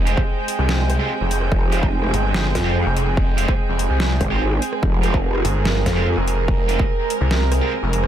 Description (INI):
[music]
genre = heavy wobble dubstep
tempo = 145 BPM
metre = 4/4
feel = half-time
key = F minor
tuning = A4 = 441 Hz
[part]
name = lush unison pad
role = sustained chords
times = 0.0-8.1 s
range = Ab3 to G5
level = -27 LUFS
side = equal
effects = chorus, sidechain pumping
[part]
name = snarling distorted saw bass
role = bass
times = 0.0-8.1 s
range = F1 to C2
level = -20 LUFS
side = equal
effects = distortion, overdrive
[part]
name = dark studio string section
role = texture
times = 0.0-8.1 s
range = Ab3 to Bb4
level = -26 LUFS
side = right 5 dB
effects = sidechain pumping
[part]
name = high-gain distorted guitar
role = stabs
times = 0.1-7.7 s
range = Ab3 to G4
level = -28 LUFS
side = right 4 dB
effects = distortion, ping-pong delay
[part]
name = dubstep drum kit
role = drums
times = 0.1-8.1 s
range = hi-hat, rim click, snare drum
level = -25 LUFS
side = equal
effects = overdrive, studio reverb
[part]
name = electronic kick drum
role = drums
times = 0.2-6.9 s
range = none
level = -21 LUFS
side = equal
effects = overdrive, studio reverb
[part]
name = growl bass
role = bass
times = 1.5-6.2 s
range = F1 to F2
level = -20 LUFS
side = equal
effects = chorus, overdrive
[sound]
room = digital ambience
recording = none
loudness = -17 LUFS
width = side -10 dB against mid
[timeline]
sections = 0.0-8.1 A section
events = none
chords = 0.0 Fmadd9